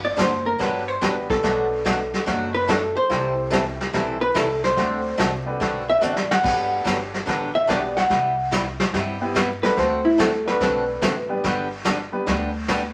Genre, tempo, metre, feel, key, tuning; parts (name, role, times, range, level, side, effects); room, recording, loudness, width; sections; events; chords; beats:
country, western swing; 144 BPM; 4/4; swing 67% on 8ths; G major; A4 = 440 Hz
vintage hollow-body jazz guitar; second line; 0.0-11.4 s; E4 to F#5; -24 LUFS; equal
upright bass; bass; 0.0-12.9 s; F#1 to G2; -35 LUFS; equal
picked swing-style acoustic guitar; accompaniment; 0.2-12.8 s; B2 to A4; -29 LUFS; equal
vintage brush drum kit; drums; 0.2-12.9 s; brushed snare drum, crash cymbal, hi-hat, kick drum, snare drum; -28 LUFS; equal
clear upright piano; accompaniment; 1.0-12.3 s; G3 to C5; -32 LUFS; equal
wet studio reverb, RT60 0.6 s; vinyl crackle; -22 LUFS; mono
0.0-12.9 A section
hollow-body jazz guitar solo 0.0-12.9; drum fill 6.0-6.4
0.0 Gmaj7; 1.4 Bm7; 3.1 C6; 4.8 D7; 6.4 Gmaj7; 8.1 Cmaj7; 9.8 D7; 11.4 G
0.18 0.60 1.02 | 1.44 1.85 2.27 2.69 | 3.10 3.52 3.94 4.35 | 4.77 5.18 5.60 6.02 | 6.44 6.85 7.27 7.69 | 8.10 8.52 8.94 9.35 | 9.77 10.19 10.61 11.02 | 11.44 11.86 12.27 12.69